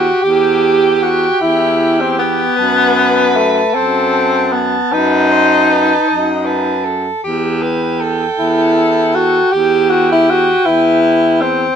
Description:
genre	classical, lyrical piece for single-reed quartet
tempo	52 BPM (dotted quarters)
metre	12/8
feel	rubato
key	E minor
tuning	A4 = 440 Hz
part	warm soprano saxophone	melody	0.0-11.5 s	G4 to D#5	-19 LUFS	left 2 dB	none
part	mellow alto saxophone	second line	0.0-11.8 s	G5 to A5	-20 LUFS	right 7 dB	none
part	mellow tenor saxophone	accompaniment	0.0-11.8 s	A3 to G4	-12 LUFS	left 1 dB	none
part	mellow baritone saxophone	bass	0.0-11.7 s	E2 to F#2	-19 LUFS	right 2 dB	none
room	light reverb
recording	minimal, uncompressed stereo recording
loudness	-11 LUFS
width	side -8 dB against mid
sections	0.0-11.8 A section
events	none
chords	0.0 Em; 2.6 B7/F#; 7.2 Em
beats	0.21 1.40 | 2.57 3.74 4.90 6.07 | 7.23 8.38 9.52 10.65

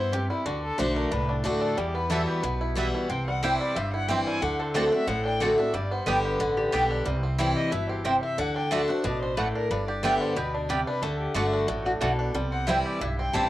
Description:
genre	bluegrass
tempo	182 BPM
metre	4/4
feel	straight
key	unclear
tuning	A4 = 440 Hz
part	bluegrass banjo	melody	0.0-13.5 s	G3 to G4	-34 LUFS	right 1 dB	cassette tape
part	dark fiddle	melody	0.0-13.5 s	D4 to A5	-32 LUFS	left 2 dB	cassette tape
part	picked steel-string acoustic guitar	accompaniment	0.0-13.5 s	E2 to G4	-28 LUFS	left 1 dB	cassette tape
part	upright bass	bass	0.0-13.5 s	G1 to G2	-32 LUFS	right 1 dB	none
part	mandolin	stabs	2.1-13.4 s	G3 to A5	-27 LUFS	right 2 dB	cassette tape
part	lap resonator guitar	second line	6.6-7.0, 11.9-12.4 s	F#4 to B4	-32 LUFS	left 2 dB	cassette tape
room	moderate booth ambience, RT60 0.2 s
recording	home recording on cassette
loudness	-24 LUFS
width	side -14 dB against mid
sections	0.0-7.1 A section; 7.1-13.5 B section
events	none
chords	0.5 D; 1.8 Emadd9; 3.1 C; 4.4 D7; 5.7 G; 7.1 C; 8.4 D; 9.7 G; 11.0 D; 12.3 C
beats	0.12 | 0.46 0.79 1.12 1.45 | 1.78 2.11 2.44 2.77 | 3.10 3.43 3.76 4.09 | 4.42 4.75 5.08 5.41 | 5.74 6.07 6.40 6.73 | 7.06 7.39 7.72 8.05 | 8.38 8.71 9.04 9.38 | 9.71 10.04 10.37 10.70 | 11.03 11.36 11.69 12.02 | 12.35 12.68 13.01 13.34

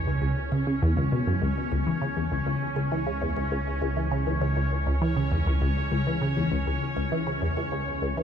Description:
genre	ambient, sequencer-driven space music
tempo	100 BPM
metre	4/4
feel	straight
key	C# minor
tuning	A4 = 440 Hz
part	analog drone	bass	0.0-8.2 s	C#2	-32 LUFS	equal	chorus
part	bubbling stepped-filter texture	texture	0.0-8.2 s	C#4 to C#5	-32 LUFS	right 1 dB	chorus, built-in reverb
part	resonant blip pluck	riff	0.1-8.2 s	C#2 to E3	-26 LUFS	equal	phaser, ping-pong delay
room	moderate huge ambient reverb, RT60 7.5 s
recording	none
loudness	-24 LUFS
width	side -8 dB against mid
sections	0.0-8.2 A section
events	fade-in on synth texture 0.0-8.2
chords	0.0 C#m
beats	0.22 0.82 | 1.42 2.02 2.62 3.22 | 3.82 4.42 5.02 5.62 | 6.22 6.82 7.42 8.02

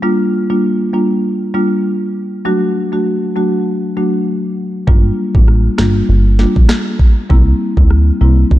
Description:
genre	dancehall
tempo	99 BPM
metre	4/4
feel	swing 56% on 16ths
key	G dorian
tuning	A4 = 440 Hz
part	marimba with medium mallets	accompaniment	0.0-8.4 s	F#3 to F#4	-15 LUFS	left 1 dB	sidechain pumping
part	plucky analog bass	bass	4.9-8.6 s	G1 to D2	-11 LUFS	equal	none
part	island pop drum kit	drums	4.9-8.6 s	kick drum, rim click, snare drum	-11 LUFS	equal	none
room	light reverb, digital ambience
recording	dark, warm production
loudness	-11 LUFS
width	side -15 dB against mid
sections	0.0-8.6 A section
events	none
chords	0.0 Gm7; 2.5 D; 4.9 Gm7; 7.3 C7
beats	| 0.03 0.64 1.24 1.85 | 2.45 3.06 3.67 4.27 | 4.88 5.48 6.09 6.70 | 7.30 7.91 8.51

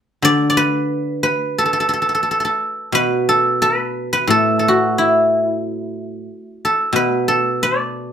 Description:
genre	chinese traditional, Chinese solo plucked strings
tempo	90 BPM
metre	2/4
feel	uneven beats, rubato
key	A zhi mode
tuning	A4 = 440 Hz
part	guzheng	solo	0.2-8.1 s	A2 to D5	-15 LUFS	equal	none
room	moderate studio reverb, RT60 0.6 s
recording	none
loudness	-15 LUFS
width	side -8 dB against mid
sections	0.0-2.9 A section; 2.9-8.1 B section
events	none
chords	none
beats	| 0.24 0.89 | 1.56 2.24 | 2.94 3.62 | 4.29 4.96 | 5.61 6.26 | 6.93 7.62

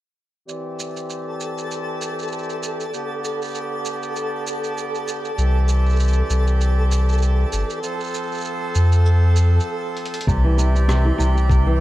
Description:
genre	folktronica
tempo	98 BPM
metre	4/4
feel	swing 56% on 16ths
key	C major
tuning	A4 = 436 Hz
part	accordion	sustained chords	0.5-11.8 s	D3 to D5	-27 LUFS	right 1 dB	low-pass filter
part	lo-fi sampler-style drum kit	drums	0.5-11.6 s	hi-hat, rim click, shaker	-32 LUFS	right 3 dB	none
part	twinkling granular texture	texture	1.3-11.8 s	G4 to A5	-30 LUFS	equal	built-in reverb
part	warm sub bass	bass	5.4-11.8 s	G1 to F2	-16 LUFS	equal	none
part	picked steel-string acoustic guitar	arpeggios	10.3-11.8 s	C3 to G3	-23 LUFS	right 1 dB	low-pass filter, tape echo
part	electronic kick drum	drums	10.3-11.6 s	none	-19 LUFS	equal	none
room	digital ambience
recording	dark, warm production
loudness	-18 LUFS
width	side -15 dB against mid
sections	0.5-10.3 A section; 10.3-11.8 B section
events	filter sweep on accordion 0.5-10.3; break 9.7-10.3; drum fill 10.0-10.3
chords	0.5 Cadd9; 2.9 G; 5.4 Cadd9; 7.8 F; 10.3 Cadd9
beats	| 0.48 1.10 1.71 2.32 | 2.93 3.54 4.16 4.77 | 5.38 5.99 6.61 7.22 | 7.83 8.44 9.05 9.67 | 10.28 10.89 11.50

